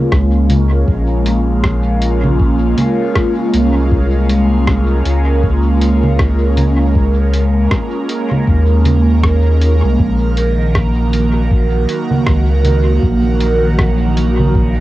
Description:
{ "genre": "ambient dub", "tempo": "79 BPM", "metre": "4/4", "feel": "swing 58% on 16ths", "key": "Bb minor", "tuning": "A4 = 440 Hz", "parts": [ { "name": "airy breathy pad", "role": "sustained chords", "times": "0.0-14.8 s", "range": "Eb3 to Bb4", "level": "-15 LUFS", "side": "right 1 dB", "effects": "chorus, phaser, cassette tape, plate reverb" }, { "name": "warm sub bass", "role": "bass", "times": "0.1-14.8 s", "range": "Bb1 to Eb2", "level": "-13 LUFS", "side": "equal", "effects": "none" }, { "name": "electronic kick drum", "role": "drums", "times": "0.1-14.7 s", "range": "none", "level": "-16 LUFS", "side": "equal", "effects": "small room ambience, cassette tape" }, { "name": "lo-fi sampler-style drum kit", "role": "drums", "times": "0.1-14.5 s", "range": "congas, hi-hat, rim click", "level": "-19 LUFS", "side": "right 1 dB", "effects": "small room ambience, cassette tape, dub echo" } ], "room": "moderate booth ambience, RT60 0.2 s", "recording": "home recording on cassette", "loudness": "-11 LUFS", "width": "side -16 dB against mid", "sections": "0.0-14.8 A section", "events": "none", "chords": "0.0 Bbm7; 10.0 Ebm/Bb", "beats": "0.12 | 0.88 1.64 2.40 3.16 | 3.92 4.68 5.43 6.20 | 6.95 7.71 8.47 9.23 | 9.99 10.75 11.51 12.27 | 13.03 13.79 14.55" }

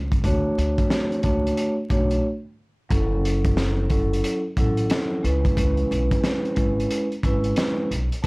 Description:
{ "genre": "hip hop, boom-bap hip-hop", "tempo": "90 BPM", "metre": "4/4", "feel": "swing 63% on 16ths", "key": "F# minor", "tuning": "A4 = 440 Hz", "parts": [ { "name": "upright bass", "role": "bass", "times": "0.0-8.3 s", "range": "F#1 to D2", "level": "-24 LUFS", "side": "equal", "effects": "transformer saturation" }, { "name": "crunchy breakbeat drum kit", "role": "drums", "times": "0.1-8.3 s", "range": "hi-hat, kick drum, snare drum", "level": "-24 LUFS", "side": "equal", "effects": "none" }, { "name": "vibraphone with soft mallets", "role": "accompaniment", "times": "0.2-8.3 s", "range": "F#3 to C#5", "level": "-24 LUFS", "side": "equal", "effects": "high-pass filter, low-pass filter" } ], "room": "little or no reverb", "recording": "dry, gritty hardware recording, vinyl crackle", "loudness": "-20 LUFS", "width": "side -28 dB against mid", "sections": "0.0-2.9 A section; 2.9-8.3 A section", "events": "break 2.2-2.9", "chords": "0.2 Dmaj7; 2.9 F#m7; 5.2 C#m7", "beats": "| 0.24 0.91 1.57 2.24 | 2.91 3.57 4.24 4.91 | 5.57 6.24 6.91 7.57 | 8.24" }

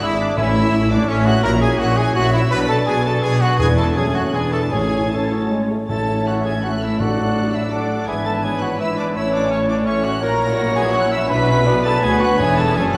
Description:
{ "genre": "quick classical-period movement for symphony orchestra", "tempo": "166 BPM", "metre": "3/4", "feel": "rubato", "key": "A major", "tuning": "A4 = 440 Hz", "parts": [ { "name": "clear studio violin section", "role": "melody", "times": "0.0-13.0 s", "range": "C#6 to B6", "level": "-32 LUFS", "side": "equal", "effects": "none" }, { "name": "bright concert flute", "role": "second line", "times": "0.0-13.0 s", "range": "C#5 to B5", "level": "-29 LUFS", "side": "equal", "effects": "none" }, { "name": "clear clarinet", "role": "second line", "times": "0.0-12.9 s", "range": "E4 to F#5", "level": "-30 LUFS", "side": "equal", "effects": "none" }, { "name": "clear studio violin section", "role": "second line", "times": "0.0-13.0 s", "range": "E4 to B5", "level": "-33 LUFS", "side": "equal", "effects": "none" }, { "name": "warm cor anglais", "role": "second line", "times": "0.0-13.0 s", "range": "C#4 to B4", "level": "-28 LUFS", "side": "equal", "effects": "none" }, { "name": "dark bassoon", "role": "accompaniment", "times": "0.0-5.7 s", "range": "A3 to D4", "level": "-30 LUFS", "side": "equal", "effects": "none" }, { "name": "warm studio viola section", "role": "accompaniment", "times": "0.0-13.0 s", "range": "A3 to D5", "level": "-31 LUFS", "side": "equal", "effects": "none" }, { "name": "warm trumpet", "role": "stabs", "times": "0.0-13.0 s", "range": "C#4 to C#5", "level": "-26 LUFS", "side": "equal", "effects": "none" }, { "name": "rich studio cello section", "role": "bass", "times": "0.0-13.0 s", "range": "D2 to B2", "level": "-26 LUFS", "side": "equal", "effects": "none" }, { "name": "rich studio double bass section", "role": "bass", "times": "0.0-13.0 s", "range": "E1 to D2", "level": "-26 LUFS", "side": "equal", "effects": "none" }, { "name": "warm French horn section", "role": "sustained chords", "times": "0.4-13.0 s", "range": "E3 to E4", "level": "-30 LUFS", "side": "equal", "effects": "none" }, { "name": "timpani", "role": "percussion", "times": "0.4-0.9, 3.6-7.5, 12.4-12.7 s", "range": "E2 to A2", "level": "-28 LUFS", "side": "equal", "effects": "none" } ], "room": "wet scoring stage reverb, RT60 1.9 s", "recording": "heard from further back in the room", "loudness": "-18 LUFS", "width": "mono", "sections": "0.0-5.9 A section; 5.9-13.0 A section", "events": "none", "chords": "0.4 A; 1.4 F#7/A#; 2.5 Bm; 3.6 E7; 4.0 F#m; 4.3 E7; 4.7 A; 7.0 D/A; 8.1 E7/G#; 9.2 A; 10.2 F#7/A#; 11.3 Bm; 12.4 E7", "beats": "0.03 | 0.38 0.73 1.09 | 1.44 1.79 2.15 | 2.51 2.87 3.23 | 3.60 3.96 4.34 | 4.72 5.12 5.51 | 5.89 6.27 6.64 | 7.00 7.36 7.72 | 8.08 8.44 8.80 | 9.16 9.52 9.87 | 10.22 10.58 10.94 | 11.29 11.66 12.03 | 12.39 12.76" }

